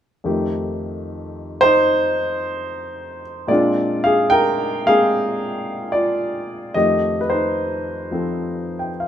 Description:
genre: solo jazz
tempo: 74 BPM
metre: 4/4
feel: swing 69% on 8ths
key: F mixolydian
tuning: A4 = 439 Hz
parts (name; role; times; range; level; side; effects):
- warm upright piano; solo; 0.2-9.1 s; F2 to G5; -18 LUFS; equal; none
room: moderate large studio reverb, RT60 1.3 s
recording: minimal, uncompressed stereo recording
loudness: -17 LUFS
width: side -9 dB against mid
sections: 0.2-9.1 A section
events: none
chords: 0.2 F9; 3.5 Bb9; 6.7 F9

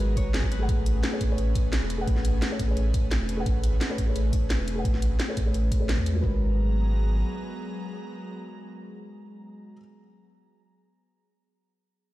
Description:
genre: liquid drum and bass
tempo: 173 BPM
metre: 4/4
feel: straight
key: G# phrygian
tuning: A4 = 440 Hz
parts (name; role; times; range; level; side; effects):
- felt-muted upright piano; accompaniment; 0.0-9.8 s; G#3 to F#5; -34 LUFS; left 2 dB; low-pass filter, ping-pong delay
- airy breathy pad; sustained chords; 0.0-9.7 s; F#3 to A#5; -37 LUFS; right 1 dB; chorus, sidechain pumping
- concert harp; arpeggios; 0.0-2.6 s; F#4 to C#5; -41 LUFS; equal; ping-pong delay
- sub bass with octave; bass; 0.0-7.2 s; E1 to E2; -25 LUFS; equal; none
- drum and bass drum kit; drums; 0.0-6.1 s; hi-hat, snare drum; -33 LUFS; equal; none
- electronic kick drum; drums; 0.2-6.3 s; none; -28 LUFS; equal; none
room: light reverb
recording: played on a big sound system in a bare room, stone room reverb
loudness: -23 LUFS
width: side -16 dB against mid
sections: 0.0-6.2 A section; 6.2-9.0 B section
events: filter sweep on felt piano 0.0-6.2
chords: 0.0 G#m9; 0.7 Amaj9; 6.2 G#m9

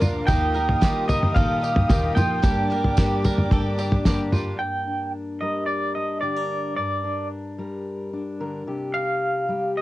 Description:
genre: indie folk with a building arrangement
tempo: 111 BPM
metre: 4/4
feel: straight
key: G minor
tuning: A4 = 440 Hz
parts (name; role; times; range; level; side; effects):
- fingerpicked steel-string acoustic guitar; accompaniment; 0.0-9.8 s; G2 to Bb4; -29 LUFS; left 2 dB; cassette tape
- picked twelve-string acoustic guitar; accompaniment; 0.0-4.6 s; G2 to Bb4; -30 LUFS; left 2 dB; cassette tape
- muted chamber string section; sustained chords; 0.0-4.6 s; Bb4 to Eb6; -33 LUFS; left 1 dB; cassette tape
- bowl-back mandolin; arpeggios; 0.0-4.6 s; F4 to Bb4; -35 LUFS; right 3 dB; cassette tape
- upright bass; bass; 0.0-4.5 s; D2 to Eb3; -28 LUFS; equal; none
- cloth-damped thuddy drum kit; drums; 0.0-4.5 s; kick drum, snare drum, toms; -20 LUFS; equal; cassette tape
- tambourine; percussion; 0.0-4.5 s; none; -41 LUFS; right 7 dB; none
- electric guitar through a small old amp; melody; 0.3-9.8 s; D5 to G5; -25 LUFS; right 1 dB; tremolo, cassette tape
room: little or no reverb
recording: home recording on cassette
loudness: -21 LUFS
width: side -16 dB against mid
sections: 0.0-4.6 A section; 4.6-9.8 B section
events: none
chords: 0.3 Ebadd9; 2.4 Gm; 8.7 Cmadd9

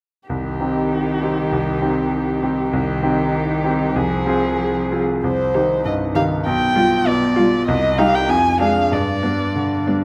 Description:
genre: quick classical-period movement for piano quartet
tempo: 98 BPM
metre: 2/4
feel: rubato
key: C minor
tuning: A4 = 438 Hz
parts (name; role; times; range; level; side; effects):
- dark violin; melody; 0.3-9.9 s; G4 to Ab5; -24 LUFS; equal; none
- rich cello; second line; 0.3-10.0 s; Eb3 to Ab3; -28 LUFS; equal; none
- bright grand piano; accompaniment; 0.3-10.0 s; B1 to Ab4; -22 LUFS; equal; none
- rich viola; accompaniment; 5.5-10.0 s; B3 to G4; -26 LUFS; equal; none
room: wet recital hall reverb, RT60 1.8 s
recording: none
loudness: -19 LUFS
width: mono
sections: 0.3-5.2 A section; 5.2-10.0 B section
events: none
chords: 0.3 Cm; 4.0 Fm/C; 5.2 Cm; 6.5 G7/B; 7.7 Cm; 8.3 Ddim/F; 8.9 G

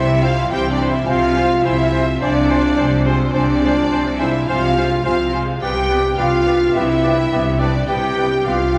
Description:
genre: cinematic, heroic adventure film score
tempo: 106 BPM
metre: 4/4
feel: straight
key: unclear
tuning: A4 = 441 Hz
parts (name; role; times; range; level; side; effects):
- rich symphonic violin section; melody; 0.0-8.8 s; C5 to G5; -30 LUFS; equal; none
- clear clarinet; second line; 0.0-8.8 s; B4 to C5; -32 LUFS; equal; none
- clear oboe; second line; 0.0-8.8 s; C5 to D5; -30 LUFS; equal; none
- warm symphonic violin section; second line; 0.0-8.8 s; C5 to G5; -28 LUFS; equal; none
- rich symphonic viola section; accompaniment; 0.0-8.8 s; E3 to F4; -31 LUFS; equal; none
- mellow French horn section; sustained chords; 0.0-8.8 s; C4 to G4; -22 LUFS; equal; none
- concert harp; arpeggios; 0.0-8.8 s; C3 to C5; -33 LUFS; equal; none
- dark trumpet; stabs; 0.0-8.8 s; C4 to G4; -25 LUFS; equal; none
- rich symphonic cello section; bass; 0.0-8.8 s; C3; -26 LUFS; equal; none
- rich symphonic double bass section; bass; 0.0-8.8 s; C2; -25 LUFS; equal; none
- mellow hollow concert flute; second line; 0.2-8.8 s; G5 to Ab5; -32 LUFS; equal; none
room: wet church reverb, RT60 2.9 s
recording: recorded in a church or concert hall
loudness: -17 LUFS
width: mono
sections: 0.0-8.8 A section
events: none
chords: 0.0 C; 1.1 Fm/C; 5.6 G/C

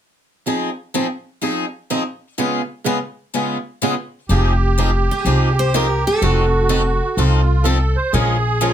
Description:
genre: acoustic string swing (jazz manouche)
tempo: 125 BPM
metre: 4/4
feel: swing 66% on 8ths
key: F minor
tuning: A4 = 441 Hz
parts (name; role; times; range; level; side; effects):
- picked swing-style acoustic guitar; accompaniment; 0.5-8.7 s; Db3 to Bb4; -23 LUFS; left 8 dB; none
- picked swing-style acoustic guitar; accompaniment; 0.5-8.7 s; Db3 to C5; -23 LUFS; right 5 dB; none
- musette accordion; second line; 4.3-8.7 s; F4 to C5; -22 LUFS; right 5 dB; none
- upright bass; bass; 4.3-8.7 s; F1 to C2; -17 LUFS; equal; none
- picked steel-string acoustic guitar; melody; 5.1-7.5 s; Ab4 to C5; -21 LUFS; equal; slapback echo
room: light reverb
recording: none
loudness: -16 LUFS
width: side -10 dB against mid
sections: 0.5-4.3 A section; 4.3-8.7 B section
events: none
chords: 0.5 Fm7; 2.4 Db7; 4.3 Fm7; 6.2 F7b9; 8.1 Bbm7

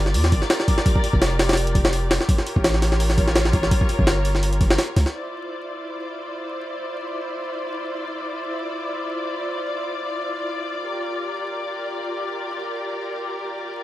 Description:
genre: drum and bass, jungle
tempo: 168 BPM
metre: 4/4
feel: swing 55% on 16ths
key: D minor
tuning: A4 = 439 Hz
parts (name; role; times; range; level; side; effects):
- dark symphonic string section; sustained chords; 0.0-13.8 s; E4 to D5; -26 LUFS; left 1 dB; none
- long sustained 808-style bass; bass; 0.0-5.1 s; F1 to E2; -21 LUFS; equal; none
- jungle sampler-style drum kit; drums; 0.1-5.1 s; hi-hat, kick drum, snare drum; -19 LUFS; equal; overdrive, studio reverb
room: light reverb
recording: vinyl crackle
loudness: -20 LUFS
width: side -15 dB against mid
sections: 0.0-5.1 A section; 5.1-13.8 B section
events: drop 0.0-5.1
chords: 0.0 Gm7; 2.3 A7b9b13; 5.1 Dm9; 10.9 Gm7

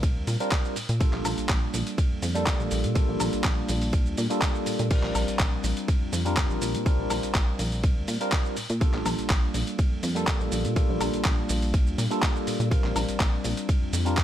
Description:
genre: filtered disco house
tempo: 123 BPM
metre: 4/4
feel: straight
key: unclear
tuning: A4 = 440 Hz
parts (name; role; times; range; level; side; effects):
- bell-like tine electric piano; accompaniment; 0.0-14.2 s; G3 to Bb4; -30 LUFS; equal; phaser, sidechain pumping
- plucky analog bass; bass; 0.0-14.2 s; Bb1 to Bb2; -29 LUFS; equal; sidechain pumping
- dusty soul sampler-style drum kit; drums; 0.0-14.2 s; crash cymbal, handclaps, hi-hat, ride cymbal, shaker, woodblock; -31 LUFS; equal; overdrive
- electronic kick drum; drums; 0.0-14.2 s; none; -24 LUFS; equal; none
room: little or no reverb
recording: none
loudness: -23 LUFS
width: side -11 dB against mid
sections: 0.0-14.2 A section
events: none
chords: 0.0 Bb69; 0.8 Gm7/Bb; 4.9 Bb69; 8.6 Gm7/Bb; 12.7 Bb69

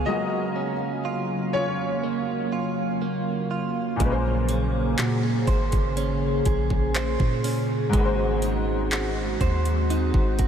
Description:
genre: contemporary R&B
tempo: 61 BPM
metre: 4/4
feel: straight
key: Bb minor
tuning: A4 = 441 Hz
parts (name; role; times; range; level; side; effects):
- warm baby grand piano; accompaniment; 0.0-10.5 s; Ab2 to Eb5; -30 LUFS; left 3 dB; ensemble chorus
- glassy FM pad; sustained chords; 0.0-10.5 s; Db3 to F5; -28 LUFS; equal; ensemble chorus, built-in reverb
- direct-recorded clean electric guitar; arpeggios; 0.0-10.5 s; Gb3 to C5; -30 LUFS; right 7 dB; analog chorus, diffuse ambient delay
- soft 808-style bass; bass; 0.0-10.5 s; Ab1 to Bb2; -26 LUFS; equal; none
- smooth R&B drum kit; drums; 4.0-10.5 s; handclaps, hi-hat, kick drum; -26 LUFS; equal; none
room: moderate huge ambient reverb, RT60 7.6 s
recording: dreamy mix soaked in reverb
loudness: -22 LUFS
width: side -8 dB against mid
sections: 0.0-4.0 A section; 4.0-10.5 B section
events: grand piano solo 0.0-4.0; break 0.1-4.0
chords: 0.1 Gbmaj7; 4.0 Bbm9; 7.9 Ab7

